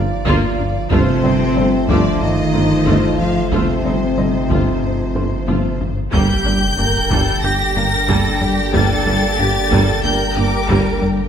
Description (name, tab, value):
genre	cinematic, hybrid orchestral and electronic film score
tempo	92 BPM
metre	4/4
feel	straight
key	G minor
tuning	A4 = 438 Hz
part	rich studio violin section	melody	0.0-11.0 s	C5 to Bb6	-23 LUFS	left 2 dB	none
part	dark trombone section	sustained chords	0.0-11.3 s	D3 to F4	-24 LUFS	right 3 dB	none
part	tight sequenced synth	arpeggios	0.0-10.9 s	F3 to G4	-27 LUFS	equal	none
part	rubbery square bass	riff	0.0-11.2 s	G2 to G3	-23 LUFS	left 2 dB	none
part	mellow tuba	bass	0.0-10.8 s	G1	-25 LUFS	right 3 dB	none
part	saturated sub bass	bass	0.0-11.3 s	G1	-25 LUFS	equal	none
part	warm concert grand piano	texture	0.0-11.3 s	Eb4 to G6	-33 LUFS	equal	ping-pong delay
part	warm symphonic viola section	accompaniment	0.3-11.0 s	G3 to F4	-25 LUFS	equal	none
part	clear symphonic double bass section	bass	0.3-10.8 s	G1 to G2	-25 LUFS	right 3 dB	none
part	taiko ensemble	drums	0.3-11.3 s	none	-24 LUFS	equal	none
part	warm symphonic violin section	second line	0.9-11.3 s	G4 to G5	-26 LUFS	left 2 dB	none
part	mellow French horn section	sustained chords	0.9-11.3 s	Bb3 to F4	-24 LUFS	left 4 dB	none
part	rich symphonic cello section	bass	0.9-11.3 s	C3 to Bb4	-24 LUFS	right 3 dB	none
part	sub drop	sound effects	6.1-8.7 s	none	-26 LUFS	equal	none
room	moderate scoring stage reverb, RT60 1.8 s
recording	none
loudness	-14 LUFS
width	side -8 dB against mid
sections	0.0-6.1 A section; 6.1-11.3 B section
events	drum fill 5.2-6.1; impact 6.1-8.7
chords	0.0 Bb/G; 0.9 F/G; 6.1 Gm